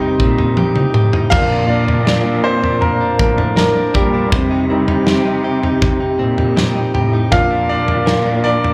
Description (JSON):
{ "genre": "pop ballad", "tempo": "80 BPM", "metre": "4/4", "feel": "straight", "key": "unclear", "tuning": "A4 = 442 Hz", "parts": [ { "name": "clear grand piano", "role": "accompaniment", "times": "0.0-8.7 s", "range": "F3 to F5", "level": "-20 LUFS", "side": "equal", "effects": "slapback echo" }, { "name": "warm French horn section", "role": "sustained chords", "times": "0.0-8.7 s", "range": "C3 to Bb4", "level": "-25 LUFS", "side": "equal", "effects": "none" }, { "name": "direct-recorded clean electric guitar", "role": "arpeggios", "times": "0.0-8.7 s", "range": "Bb2 to Bb4", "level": "-25 LUFS", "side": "equal", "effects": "digital delay, slapback echo" }, { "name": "muted chamber cello section", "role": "bass", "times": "0.0-8.7 s", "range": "A2 to C3", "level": "-22 LUFS", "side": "equal", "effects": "none" }, { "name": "modern studio drum kit", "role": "drums", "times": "0.2-8.7 s", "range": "crash cymbal, kick drum, snare drum, toms", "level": "-20 LUFS", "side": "equal", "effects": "none" } ], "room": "light reverb, studio ambience", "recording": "live gig heard through the venue's PA, club reverb", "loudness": "-15 LUFS", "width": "mono", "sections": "0.0-8.7 A section", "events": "grand piano solo 0.0-8.7; drum fill 0.6-1.3", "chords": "0.0 Cm; 1.3 Bb; 4.3 Cm; 7.3 Bb" }